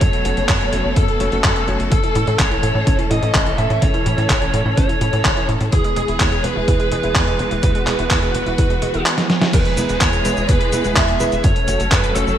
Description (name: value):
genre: italo disco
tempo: 126 BPM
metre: 4/4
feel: straight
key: E major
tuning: A4 = 440 Hz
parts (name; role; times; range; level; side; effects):
- smooth overdriven lead guitar; melody; 0.0-12.4 s; G#4 to E5; -22 LUFS; right 1 dB; ping-pong delay
- clear symphonic string section; sustained chords; 0.0-12.4 s; E3 to A4; -24 LUFS; equal; none
- tight sequencer bass; bass; 0.0-12.4 s; E1 to A2; -22 LUFS; equal; none
- dusty soul sampler-style drum kit; drums; 0.0-12.4 s; cabasa, crash cymbal, handclaps, hi-hat, snare drum; -21 LUFS; equal; gated reverb
- electronic kick drum; drums; 0.0-12.0 s; none; -20 LUFS; equal; none
- clear electric grand piano; stabs; 0.2-1.9, 9.8-12.3 s; G#3 to C#5; -25 LUFS; left 2 dB; none
- analog pluck; arpeggios; 1.9-9.5 s; C#3 to E4; -28 LUFS; right 3 dB; chorus, ping-pong delay
room: light reverb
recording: bright 1980s-style digital production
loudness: -15 LUFS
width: side -10 dB against mid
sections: 0.0-9.5 A section; 9.5-12.4 B section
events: drum fill 9.2-9.5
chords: 0.0 F#m; 1.9 A; 5.7 E; 11.4 F#m